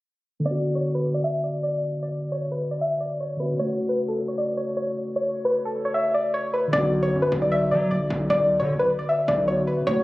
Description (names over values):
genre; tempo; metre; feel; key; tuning
hip hop; 153 BPM; 4/4; half-time; B minor; A4 = 441 Hz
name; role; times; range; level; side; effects
mellow tine electric piano; accompaniment; 0.4-10.0 s; C#3 to F#4; -27 LUFS; equal; none
soft round pluck; melody; 0.5-10.0 s; A4 to E5; -23 LUFS; left 1 dB; chorus
distorted 808-style bass; bass; 6.7-10.0 s; F#1 to F#3; -28 LUFS; equal; distortion
room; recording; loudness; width
light reverb; recorded on a phone in the room, club reverb, compression, low-pass filter, nothing above 10.5 kHz; -22 LUFS; side -18 dB against mid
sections
0.5-6.7 A section; 6.7-10.0 B section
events
filter sweep 0.5-6.7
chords
0.5 Bm; 3.6 F#m; 6.7 Bm